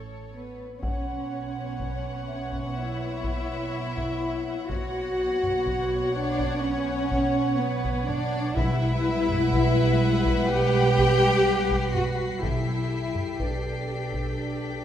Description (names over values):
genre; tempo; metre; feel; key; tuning
cinematic, suspense film score; 62 BPM; 4/4; straight; B minor; A4 = 442 Hz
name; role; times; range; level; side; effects
warm chamber violin section; melody; 0.0-14.8 s; C#5 to G5; -37 LUFS; left 3 dB; none
warm chamber violin section; second line; 0.0-14.8 s; A4 to G5; -34 LUFS; left 1 dB; none
dark chamber viola section; accompaniment; 0.0-14.8 s; G3 to C#5; -31 LUFS; equal; none
dark chamber double bass section; bass; 0.0-14.8 s; A1 to B1; -30 LUFS; right 3 dB; none
warm chamber violin section; texture; 0.0-14.8 s; B5 to C7; -43 LUFS; left 6 dB; none
mellow French horn section; sustained chords; 0.3-14.8 s; B3 to G4; -31 LUFS; left 3 dB; none
dark studio cello section; bass; 0.3-14.8 s; B3 to G4; -30 LUFS; right 1 dB; none
taiko ensemble; drums; 0.8-14.8 s; none; -33 LUFS; equal; none
vibraphone with soft mallets; texture; 0.8-14.8 s; B4 to F#5; -39 LUFS; right 2 dB; none
timpani; percussion; 8.6-13.9 s; B2; -34 LUFS; left 3 dB; none
room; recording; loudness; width
wet scoring stage reverb, RT60 1.5 s; none; -23 LUFS; side -10 dB against mid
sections
0.8-14.8 A section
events
none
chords
0.0 A; 0.8 Bsus2; 8.6 Emadd9/B; 12.4 Gadd9/B